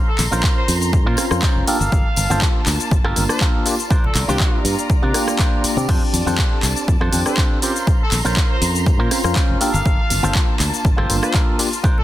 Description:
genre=filtered disco house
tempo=121 BPM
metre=4/4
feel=straight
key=unclear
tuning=A4 = 440 Hz
part: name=muted chamber string section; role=sustained chords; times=0.0-12.0 s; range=Bb3 to C6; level=-29 LUFS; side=left 1 dB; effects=sidechain pumping
part: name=electric guitar with an envelope filter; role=riff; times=0.0-12.0 s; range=Db4 to D5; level=-26 LUFS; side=right 2 dB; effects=sidechain pumping
part: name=bright trumpet section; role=melody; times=0.1-12.0 s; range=G4 to F5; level=-28 LUFS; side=left 1 dB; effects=sidechain pumping, tape echo
part: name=modern bright fingered electric bass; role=bass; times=0.2-11.2 s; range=F1 to C3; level=-21 LUFS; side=equal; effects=sidechain pumping
part: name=punchy analog drum machine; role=drums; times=0.2-11.9 s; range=cabasa, crash cymbal, handclaps, hi-hat, rim click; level=-23 LUFS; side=equal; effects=sidechain pumping on hats, sidechain pumping on perc, sidechain pumping on cymbals
part: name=tambourine and congas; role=percussion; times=0.2-12.0 s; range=none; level=-29 LUFS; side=left 2 dB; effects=sidechain pumping on perc
part: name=tine electric piano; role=accompaniment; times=0.3-11.7 s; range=Bb3 to A5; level=-24 LUFS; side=equal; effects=medium stereo tremolo, phaser, sidechain pumping
part: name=electronic kick drum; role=drums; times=0.4-11.9 s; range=none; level=-18 LUFS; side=equal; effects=none
room=digital ambience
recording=dense, heavily limited modern master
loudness=-15 LUFS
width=side -14 dB against mid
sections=0.0-12.0 A section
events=none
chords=0.0 Bbmadd9; 1.7 Gm9; 3.9 C9sus4; 5.9 F6; 7.6 Bbmadd9; 9.6 Gm9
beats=0.43 0.93 1.43 | 1.92 2.42 2.92 3.41 | 3.91 4.40 4.90 5.39 | 5.89 6.39 6.88 7.38 | 7.87 8.37 8.87 9.36 | 9.86 10.35 10.85 11.34 | 11.84

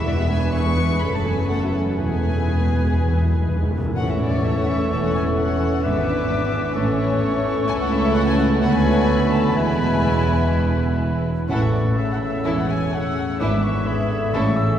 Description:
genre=quick classical-period movement for symphony orchestra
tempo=127 BPM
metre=4/4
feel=straight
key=A major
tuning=A4 = 441 Hz
part: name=warm chamber violin section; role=second line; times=0.0-14.6 s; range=G#3 to E5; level=-30 LUFS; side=left 3 dB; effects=none
part: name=dark studio viola section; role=accompaniment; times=0.0-14.6 s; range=C#3 to B4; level=-27 LUFS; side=right 2 dB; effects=none
part: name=warm chamber cello section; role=bass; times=0.0-14.7 s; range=C#2 to A2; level=-25 LUFS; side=right 1 dB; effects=none
part: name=warm chamber double bass section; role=bass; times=0.0-14.7 s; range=E1 to D2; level=-24 LUFS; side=right 1 dB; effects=none
part: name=warm chamber violin section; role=melody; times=0.1-14.8 s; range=D5 to C#6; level=-30 LUFS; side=left 3 dB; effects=none
part: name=mellow French horn section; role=sustained chords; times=0.1-14.8 s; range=G#3 to E4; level=-26 LUFS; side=left 2 dB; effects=none
part: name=timpani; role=percussion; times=0.1-4.6, 11.5-14.8 s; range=E2 to A2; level=-26 LUFS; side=left 1 dB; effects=none
part: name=bright clarinet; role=second line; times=4.0-14.8 s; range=G#4 to C#5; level=-30 LUFS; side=left 2 dB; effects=none
part: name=bright concert flute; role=second line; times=4.0-14.8 s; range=B5 to E6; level=-30 LUFS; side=equal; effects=none
part: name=clear bassoon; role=accompaniment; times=4.0-14.8 s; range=C#3 to F#3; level=-30 LUFS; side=equal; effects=none
room=wet cathedral reverb, RT60 5.5 s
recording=heard from further back in the room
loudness=-18 LUFS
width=side -10 dB against mid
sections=0.0-4.0 A section; 4.0-14.8 B section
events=timpani fill 2.0-4.0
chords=0.1 E7; 1.0 F#m; 2.0 E; 4.0 A; 5.8 E7/G#; 6.8 A; 7.7 A/C#; 8.6 Bm7/D; 9.6 E; 11.5 A; 13.4 E7/G#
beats=| 0.08 0.55 1.02 1.50 | 1.99 2.48 2.98 3.46 | 3.95 4.43 4.90 5.37 | 5.83 6.30 6.76 7.23 | 7.69 8.15 8.62 9.09 | 9.56 10.05 10.53 11.01 | 11.49 11.97 12.45 12.92 | 13.39 13.86 14.33

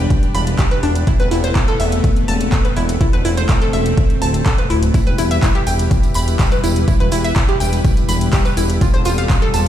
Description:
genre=melodic techno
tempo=124 BPM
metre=4/4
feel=straight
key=E phrygian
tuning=A4 = 441 Hz
part: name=lush unison pad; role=sustained chords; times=0.0-9.7 s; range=C3 to B4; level=-22 LUFS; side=equal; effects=chorus, sidechain pumping
part: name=fat analog bass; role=bass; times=0.0-9.7 s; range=D1 to E1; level=-18 LUFS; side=equal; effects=sidechain pumping
part: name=deep house drum kit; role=drums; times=0.1-9.6 s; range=handclaps, hi-hat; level=-26 LUFS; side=equal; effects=overdrive, small room ambience
part: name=electronic kick drum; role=drums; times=0.1-9.4 s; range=none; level=-16 LUFS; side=equal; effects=overdrive, small room ambience
part: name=analog pluck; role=arpeggios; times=0.3-9.6 s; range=D4 to B5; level=-22 LUFS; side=equal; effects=chorus, sidechain pumping, dub echo
part: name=tambourine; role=percussion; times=4.9-9.6 s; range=none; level=-31 LUFS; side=right 4 dB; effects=none
room=little or no reverb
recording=played on a big sound system in a bare room, stone room reverb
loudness=-13 LUFS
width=side -11 dB against mid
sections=0.0-9.7 A section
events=none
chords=0.0 G; 1.1 Amadd9/E; 4.9 Em; 8.8 F/E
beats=0.10 0.59 | 1.07 1.55 2.04 2.52 | 3.01 3.49 3.98 4.46 | 4.94 5.43 5.91 6.39 | 6.88 7.36 7.85 8.33 | 8.81 9.30

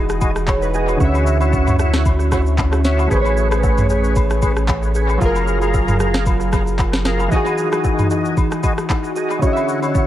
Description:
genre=amapiano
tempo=114 BPM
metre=4/4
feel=swing 55% on 16ths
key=E major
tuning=A4 = 439 Hz
part: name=warm analog keys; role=accompaniment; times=0.0-10.1 s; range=D3 to E5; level=-21 LUFS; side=right 1 dB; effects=chorus, analog delay
part: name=airy breathy pad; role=sustained chords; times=0.0-10.1 s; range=D3 to A#4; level=-26 LUFS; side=left 1 dB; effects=chorus, sidechain pumping
part: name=round analog bass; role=bass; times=0.0-7.3 s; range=E1 to D2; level=-19 LUFS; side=equal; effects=none
part: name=impact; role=sound effects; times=0.0-1.0 s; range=none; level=barely audible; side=none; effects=none
part: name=smooth R&B drum kit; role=drums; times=0.1-10.1 s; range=handclaps, kick drum, rim click, shaker, snare drum, toms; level=-20 LUFS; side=equal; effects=analog delay
part: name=tonewheel organ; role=stabs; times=0.2-10.1 s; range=E4 to E#5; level=-24 LUFS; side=left 1 dB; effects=overdrive, chorus vibrato, slow rotary speaker, analog delay
part: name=agogo bells and woodblock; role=percussion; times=0.2-10.1 s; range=none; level=-29 LUFS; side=left 5 dB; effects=none
room=light reverb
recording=echo-heavy mix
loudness=-15 LUFS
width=side -12 dB against mid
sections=0.0-10.1 A section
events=impact 0.0-1.0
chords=0.0 Emaj9; 1.0 Dmaj9; 3.1 Amaj9; 5.2 F#maj9; 7.3 Emaj9; 9.4 Dmaj9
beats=0.48 | 1.00 1.53 2.06 2.58 | 3.11 3.64 4.16 4.69 | 5.21 5.74 6.27 6.79 | 7.32 7.85 8.37 8.90 | 9.43 9.95

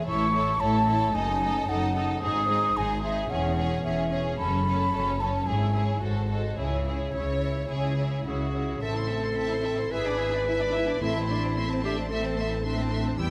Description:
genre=classical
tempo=110 BPM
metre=4/4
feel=straight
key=C# minor, A minor from 8.8 s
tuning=A4 = 440 Hz
part: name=warm symphonic violin section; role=melody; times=0.0-13.3 s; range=B#4 to E6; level=-41 LUFS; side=equal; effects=none
part: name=mellow hollow concert flute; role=second line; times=0.0-8.5 s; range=C#5 to D#6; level=-31 LUFS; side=equal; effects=none
part: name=rich symphonic violin section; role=second line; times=0.0-13.3 s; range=F#4 to G5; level=-38 LUFS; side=equal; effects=none
part: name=concert harp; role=arpeggios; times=0.0-13.3 s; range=E2 to E5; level=-38 LUFS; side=equal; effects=none
part: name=warm symphonic viola section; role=accompaniment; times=0.1-13.3 s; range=G3 to F#4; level=-37 LUFS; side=equal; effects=none
part: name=dark symphonic cello section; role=bass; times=0.1-13.3 s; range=E2 to G#4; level=-34 LUFS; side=equal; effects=none
part: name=rich symphonic double bass section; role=bass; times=0.1-13.3 s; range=E1 to E2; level=-34 LUFS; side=equal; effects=none
part: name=clear clarinet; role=second line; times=8.3-13.3 s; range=D4 to B4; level=-32 LUFS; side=equal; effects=none
part: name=timpani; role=percussion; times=11.0-11.8 s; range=A2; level=-38 LUFS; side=equal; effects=none
room=moderate concert hall reverb, RT60 2.0 s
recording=none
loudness=-27 LUFS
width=mono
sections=0.0-8.8 A section; 8.8-13.3 B section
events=none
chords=0.1 A; 1.1 D#dim/F#; 2.2 G#; 3.3 C#m/E; 4.4 F#m; 5.5 C#m/G#; 6.0 G#7b9; 6.6 C#m; 8.8 Am; 9.9 E7/G#; 11.0 Am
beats=| 0.07 0.60 1.14 1.68 | 2.23 2.76 3.30 3.84 | 4.39 4.93 5.48 6.03 | 6.59 7.15 7.71 8.26 | 8.82 9.37 9.92 10.47 | 11.02 11.56 12.11 12.65 | 13.19

